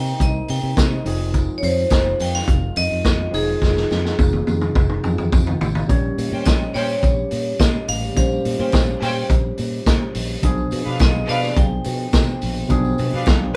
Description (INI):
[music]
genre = disco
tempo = 106 BPM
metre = 4/4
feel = straight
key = Bb dorian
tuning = A4 = 443 Hz
[part]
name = vibraphone with hard mallets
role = melody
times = 0.0-13.6 s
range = Ab4 to G5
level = -28 LUFS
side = equal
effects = none
[part]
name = tine electric piano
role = accompaniment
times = 0.0-13.6 s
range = Bb2 to Db5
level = -29 LUFS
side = equal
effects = overdrive
[part]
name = mellow French horn section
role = sustained chords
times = 0.0-13.6 s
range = C3 to Ab4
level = -34 LUFS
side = equal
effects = none
[part]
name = fingered electric bass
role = bass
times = 0.0-13.5 s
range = E1 to C3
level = -27 LUFS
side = equal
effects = none
[part]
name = tambourine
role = percussion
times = 0.1-13.4 s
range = none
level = -44 LUFS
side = equal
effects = none
[part]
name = vintage drum kit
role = drums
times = 0.2-13.4 s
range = hi-hat, kick drum, snare drum, toms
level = -22 LUFS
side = equal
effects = none
[part]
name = clear studio string section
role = second line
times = 6.3-13.3 s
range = Db4 to G5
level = -28 LUFS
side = equal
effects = none
[sound]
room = moderate studio ambience, RT60 0.5 s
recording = band playing live in one room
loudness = -19 LUFS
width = mono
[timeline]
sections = 0.0-5.9 A section; 5.9-13.6 B section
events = drum fill 3.6-5.9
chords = 0.0 Cm7; 1.1 Fm7; 5.9 Bbm69; 10.4 G7b9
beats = 0.20 0.77 | 1.34 1.91 2.48 3.05 | 3.62 4.18 4.75 5.32 | 5.89 6.46 7.03 7.60 | 8.16 8.73 9.30 9.87 | 10.44 11.00 11.57 12.14 | 12.70 13.27